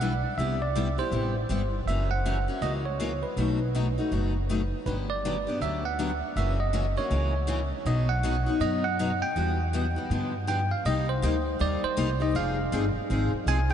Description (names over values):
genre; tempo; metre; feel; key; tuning
acoustic string swing (jazz manouche); 160 BPM; 4/4; swing 62% on 8ths; unclear; A4 = 440 Hz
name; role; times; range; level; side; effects
bell-like tine electric piano; melody; 0.0-13.7 s; B4 to Ab5; -31 LUFS; right 3 dB; medium stereo tremolo, diffuse ambient delay
picked steel-string acoustic guitar; accompaniment; 0.0-13.7 s; B2 to B4; -30 LUFS; left 4 dB; lush chorus
upright bass; bass; 0.0-13.7 s; F1 to G2; -28 LUFS; equal; none
room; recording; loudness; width
moderate huge ambient reverb, RT60 8.5 s; dreamy mix soaked in reverb, nothing above 10.5 kHz; -25 LUFS; side -9 dB against mid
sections
0.0-10.9 A section; 10.9-13.7 B section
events
none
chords
0.4 Cmaj7; 1.9 F#7; 3.4 B7; 4.9 Gmaj7; 6.4 F#7; 7.9 B; 9.4 Emadd9; 10.1 G7; 10.9 Cm7; 12.3 Fm7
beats
0.00 | 0.38 0.75 1.12 1.49 | 1.87 2.24 2.61 2.98 | 3.36 3.73 4.11 4.48 | 4.86 5.23 5.60 5.98 | 6.35 6.73 7.10 7.48 | 7.85 8.23 8.60 8.98 | 9.35 9.73 10.10 10.48 | 10.85 11.22 11.60 11.97 | 12.35 12.72 13.09 13.46